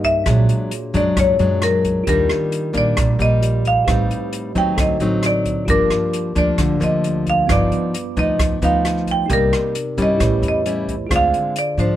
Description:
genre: bossa nova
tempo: 133 BPM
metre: 4/4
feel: straight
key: unclear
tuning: A4 = 441 Hz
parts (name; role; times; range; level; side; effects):
- marimba with medium hard mallets; melody; 0.0-12.0 s; Bb4 to G5; -20 LUFS; equal; none
- bell-like tine electric piano; accompaniment; 0.0-12.0 s; B3 to D6; -28 LUFS; right 4 dB; medium stereo tremolo
- nylon-string guitar; accompaniment; 0.0-12.0 s; G2 to G4; -21 LUFS; left 2 dB; none
- upright bass; bass; 0.0-12.0 s; G1 to Ab2; -21 LUFS; right 1 dB; none
- open jazz drum kit; drums; 0.0-11.9 s; hi-hat, kick drum, rim click; -24 LUFS; right 1 dB; none
room: little or no reverb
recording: none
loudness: -15 LUFS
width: side -12 dB against mid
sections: 0.0-12.0 A section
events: none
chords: 0.3 Bb7alt; 2.1 Ebmaj7; 3.9 Am7b5; 4.8 D7b9; 5.7 Gm7; 7.5 G7b13; 9.3 Cm7; 10.2 A7; 11.1 Dm7b5

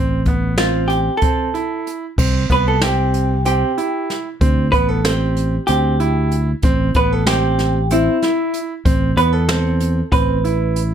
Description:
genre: progressive instrumental, band music in an uneven meter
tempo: 189 BPM (eighths)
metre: 7/8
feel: straight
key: A minor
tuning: A4 = 440 Hz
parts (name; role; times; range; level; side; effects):
- clear concert grand piano; arpeggios; 0.0-10.9 s; B3 to E4; -22 LUFS; right 4 dB; none
- fingered electric bass; bass; 0.0-10.9 s; A1 to E2; -18 LUFS; equal; none
- jazz brush drum kit; drums; 0.3-10.9 s; crash cymbal, hi-hat, kick drum, snare drum; -20 LUFS; equal; none
- vintage hollow-body jazz guitar; melody; 0.6-10.8 s; E4 to B4; -19 LUFS; right 1 dB; none
room: light reverb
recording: none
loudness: -15 LUFS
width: side -9 dB against mid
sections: 0.0-2.2 A section; 2.2-10.9 B section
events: none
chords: 0.0 Am; 2.2 C; 4.4 D5; 6.6 Amadd9

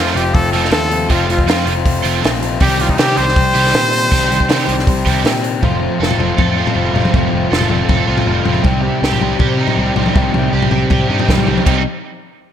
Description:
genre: indie rock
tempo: 159 BPM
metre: 4/4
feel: straight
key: C dorian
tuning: A4 = 439 Hz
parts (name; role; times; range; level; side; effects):
- bright trumpet; melody; 0.0-5.2 s; Eb4 to C5; -17 LUFS; equal; none
- cranked stack guitar; riff; 0.0-11.8 s; C3 to A4; -19 LUFS; right 8 dB; overdrive, ensemble chorus, tape echo
- overdriven electric guitar; riff; 0.0-11.8 s; F2 to G4; -19 LUFS; left 7 dB; none
- picked electric bass; bass; 0.0-11.8 s; F1 to C3; -19 LUFS; equal; none
- compact cocktail drum kit; drums; 0.2-11.8 s; crash cymbal, hi-hat, kick drum, snare drum, toms; -17 LUFS; equal; none
room: moderate lush hall reverb, RT60 1.7 s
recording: big arena sound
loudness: -12 LUFS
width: side -9 dB against mid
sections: 0.0-5.6 A section; 5.6-11.7 B section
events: none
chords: 0.0 F; 2.6 Cm; 5.6 Fadd9; 8.6 Cm

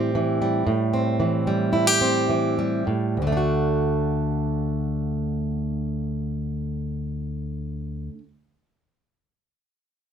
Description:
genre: folk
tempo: 98-120 BPM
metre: 4/4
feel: straight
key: D mixolydian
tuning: A4 = 440 Hz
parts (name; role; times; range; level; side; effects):
- fingerpicked plugged-in steel-string acoustic guitar; accompaniment; 0.0-8.3 s; D2 to G4; -22 LUFS; right 1 dB; none
room: moderate studio reverb, RT60 0.7 s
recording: none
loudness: -22 LUFS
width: side -8 dB against mid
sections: 0.0-3.2 A section; 3.2-8.1 B section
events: slowing down 0.0-3.2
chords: 0.0 Am7; 3.2 D

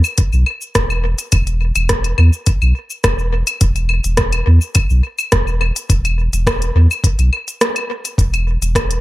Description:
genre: organic downtempo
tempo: 105 BPM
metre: 4/4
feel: straight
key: unclear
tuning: A4 = 440 Hz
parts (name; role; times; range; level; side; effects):
- organic electronic drum kit; drums; 0.0-9.0 s; claves, hi-hat, rim click, shaker; -19 LUFS; left 1 dB; tape echo
- electronic kick drum; drums; 0.2-8.9 s; none; -16 LUFS; equal; overdrive
- warm sub bass; bass; 0.3-9.0 s; E1 to E2; -14 LUFS; equal; none
room: little or no reverb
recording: echo-heavy mix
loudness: -13 LUFS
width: side -17 dB against mid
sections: 0.0-9.0 A section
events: break 7.6-8.2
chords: none

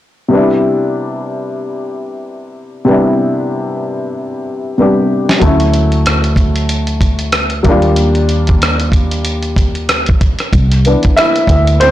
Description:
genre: R&B, neo-soul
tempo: 94 BPM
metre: 4/4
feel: swing 57% on 16ths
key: C major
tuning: A4 = 440 Hz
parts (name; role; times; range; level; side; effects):
- warm upright piano; accompaniment; 0.3-11.9 s; C3 to E5; -14 LUFS; left 1 dB; plate reverb
- dusty soul sampler-style drum kit; drums; 5.3-11.9 s; hi-hat, kick drum, rim click, snare drum; -13 LUFS; equal; soft clipping on snare
- fretless electric bass; bass; 5.4-11.9 s; C2 to Eb2; -14 LUFS; equal; analog chorus
room: moderate small room reverb, RT60 0.5 s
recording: blown-out, overdriven recording, overdrive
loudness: -11 LUFS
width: side -13 dB against mid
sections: 0.3-10.5 A section; 10.5-11.9 B section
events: drum fill 4.1-5.4; upright piano solo 10.5-11.9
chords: 0.3 Cmaj9; 5.4 Dmaj9; 7.7 Ebmaj9; 10.5 Cmaj9

